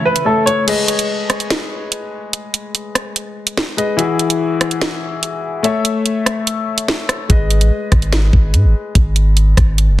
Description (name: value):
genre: hip hop, drill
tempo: 145 BPM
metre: 4/4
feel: half-time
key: G# phrygian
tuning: A4 = 440 Hz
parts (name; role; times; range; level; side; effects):
- clear concert grand piano; accompaniment; 0.0-10.0 s; E3 to E5; -20 LUFS; left 4 dB; none
- dark symphonic string section; sustained chords; 0.0-0.7 s; C#3 to E4; -26 LUFS; right 2 dB; none
- clear upright piano; melody; 0.1-0.6 s; A4 to C#5; -17 LUFS; right 1 dB; tape echo
- drill drum kit; drums; 0.2-9.9 s; crash cymbal, hi-hat, kick drum, rim click, snare drum; -16 LUFS; equal; soft clipping on snare
- long sustained 808-style bass; bass; 7.3-10.0 s; F#1 to G#2; -12 LUFS; equal; none
room: light reverb, small room ambience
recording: dense, heavily limited modern master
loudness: -14 LUFS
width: side -15 dB against mid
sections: 0.7-10.0 A section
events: break 0.7-7.3; kick muted 5.6-7.3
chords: 0.0 A; 0.7 G#m; 4.0 Eadd9; 5.6 A; 7.3 G#m